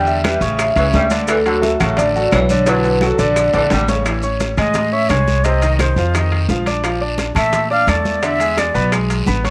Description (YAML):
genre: latin, salsa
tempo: 173 BPM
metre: 4/4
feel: straight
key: A major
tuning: A4 = 440 Hz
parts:
  - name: vibraphone with soft mallets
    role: melody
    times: 0.0-3.7 s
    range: A4 to E5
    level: -20 LUFS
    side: equal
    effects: none
  - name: mellow saxophone section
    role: second line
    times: 0.0-3.9 s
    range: C#3 to G3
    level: -27 LUFS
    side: equal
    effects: tape echo
  - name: bright concert grand piano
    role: accompaniment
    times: 0.0-9.5 s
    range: C3 to D6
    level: -23 LUFS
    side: equal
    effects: none
  - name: upright bass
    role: bass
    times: 0.0-9.5 s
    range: A1 to Bb2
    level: -22 LUFS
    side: equal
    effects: none
  - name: bongos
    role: percussion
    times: 0.1-9.5 s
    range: none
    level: -31 LUFS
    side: equal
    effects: none
  - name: congas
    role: percussion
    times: 0.1-9.5 s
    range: none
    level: -28 LUFS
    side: equal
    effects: none
  - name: maracas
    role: percussion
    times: 0.1-9.5 s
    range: none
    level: -36 LUFS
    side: equal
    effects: none
  - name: claves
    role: percussion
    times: 0.2-9.1 s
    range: none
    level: -31 LUFS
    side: equal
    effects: none
  - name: guiro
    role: percussion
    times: 0.2-9.5 s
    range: none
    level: -33 LUFS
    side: equal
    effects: none
  - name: timbales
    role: percussion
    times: 0.2-9.5 s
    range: none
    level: -28 LUFS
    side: equal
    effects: none
  - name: breathy bright concert flute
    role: melody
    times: 4.6-8.9 s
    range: C5 to F5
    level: -20 LUFS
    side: equal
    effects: none
room: light reverb, studio reverb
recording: none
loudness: -16 LUFS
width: mono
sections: 0.0-4.1 A section; 4.1-9.5 B section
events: drum fill 2.7-4.1; flute solo 4.1-9.5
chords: 0.0 Em7; 0.6 A7; 1.3 Dmaj9; 2.7 Bm7; 3.4 Bb; 4.1 Amaj7; 5.5 Cm; 6.1 Bbadd11; 6.8 Bbmaj7; 8.2 E7